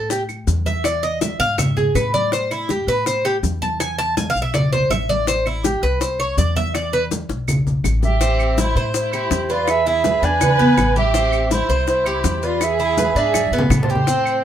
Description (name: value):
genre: latin, Cuban son and guajira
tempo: 164 BPM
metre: 4/4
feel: straight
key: A minor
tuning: A4 = 440 Hz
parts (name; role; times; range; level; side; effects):
- Cuban tres; arpeggios; 0.0-14.4 s; B3 to A5; -20 LUFS; equal; none
- upright bass; bass; 0.0-14.4 s; A1 to A2; -23 LUFS; left 1 dB; none
- bongos; percussion; 0.1-14.3 s; none; -26 LUFS; left 4 dB; none
- congas; percussion; 0.1-14.4 s; none; -24 LUFS; equal; none
- maracas; percussion; 0.1-14.4 s; none; -30 LUFS; left 7 dB; none
- claves; percussion; 0.3-14.4 s; none; -30 LUFS; right 5 dB; none
- mellow clarinet; melody; 8.0-14.4 s; C5 to A5; -20 LUFS; right 3 dB; none
- warm studio violin section; second line; 8.0-14.4 s; E4 to C5; -24 LUFS; right 2 dB; none
room: moderate small room reverb, RT60 0.5 s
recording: band playing live in one room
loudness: -16 LUFS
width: side -10 dB against mid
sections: 0.0-8.2 A section; 8.2-14.4 B section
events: Cuban tres solo 0.0-8.2; drum fill 7.3-8.2, 13.3-14.1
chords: 0.0 A5; 0.8 E; 2.3 A5; 3.8 E5; 5.3 Am; 6.7 E5; 8.2 Am7; 9.7 E7; 11.1 Am7; 12.6 E7